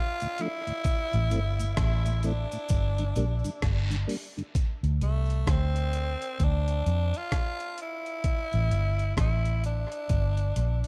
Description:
dub reggae; 65 BPM; 4/4; swing 62% on 16ths; A4 = 440 Hz
growling tenor saxophone; melody; 0.0-10.9 s; A3 to F4; -36 LUFS; equal; tape echo
mellow tonewheel organ; accompaniment; 0.2-4.4 s; D2 to D4; -37 LUFS; equal; chorus vibrato, slow rotary speaker, high-pass filter
breakbeat sampler-style drum kit; drums; 0.2-10.9 s; hi-hat, kick drum, rim click; -32 LUFS; equal
cabasa and guiro; percussion; 0.2-4.8 s; -48 LUFS; equal; high-pass filter on perc, tape echo
vintage muted fingered electric bass; bass; 1.1-10.8 s; G1 to F2; -28 LUFS; equal
digital ambience; dark, warm production; -28 LUFS; mono
0.0-10.9 A section
part muted 4.5-10.9
0.0 Dm; 0.9 Am; 2.7 Gm; 4.5 N.C.; 8.2 A5; 10.1 Gm

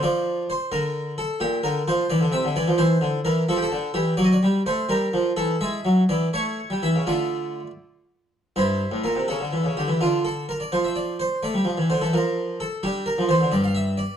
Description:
classical, baroque-style suite movement for harpsichord; 85 BPM (dotted quarters); 6/8; rubato; D minor; A4 = 440 Hz
harpsichord; solo; 0.0-14.2 s; G2 to F5; -20 LUFS; equal
moderate stone room reverb, RT60 0.9 s; dark, warm production; -20 LUFS; side -8 dB against mid
0.0-8.6 A section; 8.6-14.2 A section
0.0 N.C.; 1.4 Bb69; 2.1 Cadd9; 2.8 C; 3.5 F; 4.2 D/F#; 4.9 Gm; 5.6 E; 6.3 A7; 7.1 Dm; 8.6 Edim/G; 9.3 A/C#; 10.0 N.C.; 11.4 F; 12.1 N.C.; 12.8 G5; 13.5 N.C.

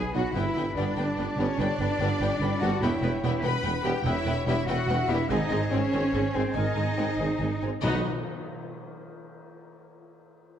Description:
cinematic, heroic adventure film score; 96 BPM (dotted quarters); 12/8; straight; A4 = 441 Hz
mellow clarinet; second line; 0.0-8.0 s; G#4 to D#5; -38 LUFS; left 3 dB
silver concert flute; second line; 0.0-8.1 s; B#4 to B5; -36 LUFS; left 5 dB
warm oboe; second line; 0.0-8.0 s; D#5 to B5; -39 LUFS; right 1 dB
warm symphonic violin section; second line; 0.0-8.1 s; B4 to B5; -38 LUFS; left 3 dB
mellow tuba; bass; 0.0-8.0 s; E1 to B1; -34 LUFS; right 3 dB
rich symphonic cello section; bass; 0.0-8.1 s; B3 to B4; -30 LUFS; right 1 dB
warm symphonic violin section; melody; 0.1-8.1 s; D#5 to G#5; -40 LUFS; left 5 dB
rich symphonic viola section; accompaniment; 0.1-8.1 s; B3 to B4; -34 LUFS; equal
warm French horn section; sustained chords; 0.1-8.0 s; F#3 to D#4; -36 LUFS; left 4 dB
warm symphonic double bass section; bass; 0.1-8.1 s; E1 to B1; -30 LUFS; right 2 dB
tam-tam; percussion; 7.8-9.5 s; -43 LUFS; left 2 dB
timpani; percussion; 7.8-8.0 s; B2; -35 LUFS; left 1 dB
moderate scoring stage reverb, RT60 2.0 s; dark, warm production; -24 LUFS; side -9 dB against mid
0.0-7.8 A section; 7.8-10.3 B section
band accent 7.8-8.3
0.4 G; 2.8 Em; 5.3 G#; 7.8 B

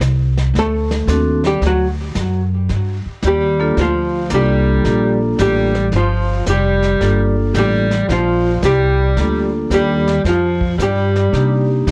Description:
jazz, small-group swing and bop; 111 BPM; 4/4; swing 67% on 8ths; G minor; A4 = 440 Hz
upright bass; bass; 0.0-11.9 s; F1 to C3; -20 LUFS; equal
vintage brush drum kit; drums; 0.0-11.9 s; brushed snare drum, hi-hat, kick drum, snare drum; -29 LUFS; equal
archtop guitar, miked and amplified; melody; 0.6-11.7 s; F3 to A4; -21 LUFS; equal; plate reverb, tape echo
vibraphone with medium hard mallets; accompaniment; 1.1-11.9 s; Bb3 to A4; -22 LUFS; equal; plate reverb
breathy baritone saxophone; second line; 3.2-11.6 s; F3 to G3; -24 LUFS; equal; plate reverb
moderate small room reverb, RT60 0.5 s; cassette tape; -16 LUFS; mono
0.0-2.7 A section; 2.7-11.9 B section
hollow-body jazz guitar solo 0.0-2.7
0.0 N.C.; 0.5 D7; 2.7 Gm9

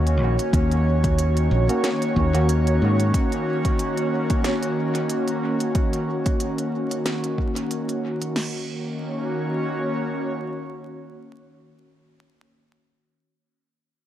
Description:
ambient dub; 92 BPM; 4/4; swing 56% on 16ths; Eb minor; A4 = 439 Hz
airy breathy pad; sustained chords; 0.0-11.7 s; Eb3 to Db5; -24 LUFS; equal; chorus
felt-muted upright piano; arpeggios; 0.0-3.2 s; barely audible
fingered electric bass; bass; 0.0-3.1 s; Bb1 to Ab2; -19 LUFS; equal
bubbling stepped-filter texture; texture; 0.0-8.4 s; Db4 to Db5; -32 LUFS; right 1 dB; chorus, built-in reverb
organic electronic drum kit; drums; 0.1-8.3 s; hi-hat, snare drum; -32 LUFS; equal; dub echo
deep house drum kit; drums; 0.5-8.5 s; crash cymbal, kick drum, snare drum; -24 LUFS; equal; overdrive
barky tine electric piano; stabs; 1.7-2.5 s; Eb3 to Gb4; -31 LUFS; right 2 dB; overdrive, dub echo
moderate spring reverb, RT60 2.2 s; vinyl crackle; -20 LUFS; side -12 dB against mid
0.0-8.4 A section; 8.4-11.0 B section
0.0 Ebm7

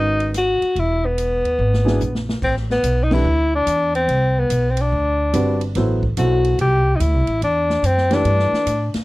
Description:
modal jazz; 144 BPM; 4/4; swing 66% on 8ths; A dorian; A4 = 439 Hz
breathy tenor saxophone; melody; 0.0-9.0 s; B3 to G4; -19 LUFS; left 1 dB
warm baby grand piano; accompaniment; 0.0-8.6 s; B2 to D5; -22 LUFS; right 1 dB
upright bass; bass; 0.0-9.0 s; E1 to A2; -20 LUFS; equal
swinging big-band drum kit; drums; 0.2-9.0 s; crash cymbal, hi-hat, kick drum, ride cymbal, rim click, snare drum, toms; -29 LUFS; equal
small room ambience; dry, close 1970s-style studio recording; -16 LUFS; side -20 dB against mid
0.0-2.4 A section; 2.4-9.0 B section
drum fill 1.6-2.4; band accent 3.1
0.0 C#9sus4; 0.8 E; 2.4 Am11

